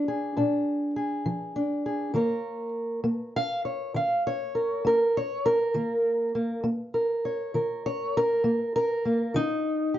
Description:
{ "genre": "acoustic country blues, solo or duo", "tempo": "67 BPM (dotted quarters)", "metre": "12/8", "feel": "straight", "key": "unclear", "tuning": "A4 = 437 Hz", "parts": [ { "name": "fingerpicked old ladder-braced acoustic guitar", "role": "solo", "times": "0.0-10.0 s", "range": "Bb2 to F5", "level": "-24 LUFS", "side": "equal", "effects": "none" } ], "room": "moderate studio reverb, RT60 0.6 s", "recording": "nothing above 7.5 kHz", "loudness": "-24 LUFS", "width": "side -12 dB against mid", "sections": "0.0-10.0 A section", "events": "steel-string acoustic guitar solo 0.0-10.0", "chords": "0.0 Bb7; 2.2 Eb7(no3)" }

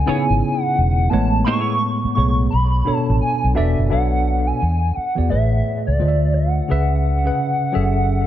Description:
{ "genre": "R&B", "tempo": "86 BPM", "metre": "4/4", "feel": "swing 61% on 16ths", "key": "B dorian", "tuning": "A4 = 441 Hz", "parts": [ { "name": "hollow square lead", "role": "melody", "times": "0.0-8.3 s", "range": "D5 to C#6", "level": "-22 LUFS", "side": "equal", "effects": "chorus, analog delay" }, { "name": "semi-hollow electric guitar", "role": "second line", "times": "0.1-1.8 s", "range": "B3 to C#5", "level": "-25 LUFS", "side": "right 4 dB", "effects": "lush chorus" }, { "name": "tine electric piano", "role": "accompaniment", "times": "0.1-8.3 s", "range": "A2 to F#5", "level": "-21 LUFS", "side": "equal", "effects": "medium stereo tremolo, analog delay" }, { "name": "vintage muted fingered electric bass", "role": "bass", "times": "0.1-8.3 s", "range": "E1 to E2", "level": "-18 LUFS", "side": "equal", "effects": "none" } ], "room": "light reverb, digital ambience", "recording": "echo-heavy mix", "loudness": "-16 LUFS", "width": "side -12 dB against mid", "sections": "0.0-3.9 A section; 3.9-8.3 B section", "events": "none", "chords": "0.0 C#m7; 1.1 Amaj9; 2.5 Bm9; 4.6 E9; 5.3 Amaj7; 6.0 Dm7; 6.7 C#m7; 7.7 F#m9" }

